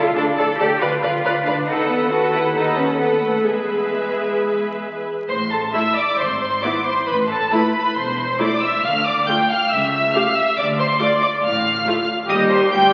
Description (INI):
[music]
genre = quick classical-period movement for string orchestra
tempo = 137 BPM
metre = 4/4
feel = rubato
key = A minor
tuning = A4 = 441 Hz
[part]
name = rich studio violin section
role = melody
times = 0.0-12.9 s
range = E5 to G6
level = -24 LUFS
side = equal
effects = none
[part]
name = rich symphonic violin section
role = second line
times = 0.0-12.9 s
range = A4 to G5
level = -24 LUFS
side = equal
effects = none
[part]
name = clear symphonic viola section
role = accompaniment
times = 0.0-12.9 s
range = G3 to B4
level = -24 LUFS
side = equal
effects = none
[part]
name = rich symphonic cello section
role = bass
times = 0.0-12.9 s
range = C#2 to A4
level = -27 LUFS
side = equal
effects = none
[part]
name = warm symphonic double bass section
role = bass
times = 0.0-12.9 s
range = E1 to E2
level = -34 LUFS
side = equal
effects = none
[sound]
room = wet concert hall reverb, RT60 2.1 s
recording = very old 78 rpm record, vinyl crackle, nothing above 7.6 kHz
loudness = -19 LUFS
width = mono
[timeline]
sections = 0.0-5.3 A section; 5.3-12.9 A section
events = none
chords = 0.0 Dm; 0.8 Bdim/D; 1.7 B7/D#; 3.5 E; 5.3 A5; 6.2 N.C.; 7.1 Am; 8.8 Dm; 9.7 A/C# (rootless); 10.6 Dm; 12.3 Eb